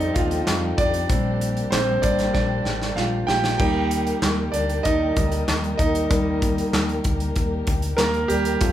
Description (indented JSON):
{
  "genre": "piano-driven pop",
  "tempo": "96 BPM",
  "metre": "4/4",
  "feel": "straight",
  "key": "unclear",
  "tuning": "A4 = 440 Hz",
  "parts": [
    { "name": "clear concert grand piano", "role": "accompaniment", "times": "0.0-8.7 s", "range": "G3 to G5", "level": "-23 LUFS", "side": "right 1 dB", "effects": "none" },
    { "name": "dark studio string section", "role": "sustained chords", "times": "0.0-8.7 s", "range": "F3 to Bb4", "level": "-30 LUFS", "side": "left 3 dB", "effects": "none" },
    { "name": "fretless electric bass", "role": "bass", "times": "0.0-8.7 s", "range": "A1 to F2", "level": "-27 LUFS", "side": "left 1 dB", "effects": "none" },
    { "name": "modern studio drum kit", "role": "drums", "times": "0.0-8.7 s", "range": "crash cymbal, handclaps, hi-hat, kick drum, snare drum", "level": "-24 LUFS", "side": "equal", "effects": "none" }
  ],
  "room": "moderate large studio reverb, RT60 0.8 s",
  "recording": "band playing live in one room",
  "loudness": "-19 LUFS",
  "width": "side -12 dB against mid",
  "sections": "0.0-8.7 A section",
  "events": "grand piano solo 0.0-8.7; drum fill 2.4-3.6",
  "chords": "0.0 Fadd9; 1.1 Bb6; 3.6 Eb"
}